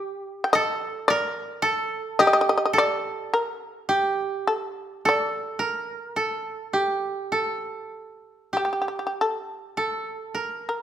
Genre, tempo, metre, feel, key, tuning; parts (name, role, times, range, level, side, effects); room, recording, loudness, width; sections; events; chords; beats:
japanese traditional, Japanese chamber music; 47-55 BPM; 4/4; rubato; A4 = 441 Hz
koto; second line; 0.0-10.8 s; G4 to Bb4; -25 LUFS; right 2 dB
shamisen; melody; 0.4-10.8 s; G4 to G5; -22 LUFS; left 2 dB
moderate recital hall reverb, RT60 1.4 s; -23 LUFS; side -10 dB against mid
0.0-9.8 A section; 9.8-10.8 B section
| 0.53 1.63 2.74 3.88 | 5.04 6.18 7.34 8.55 | 9.76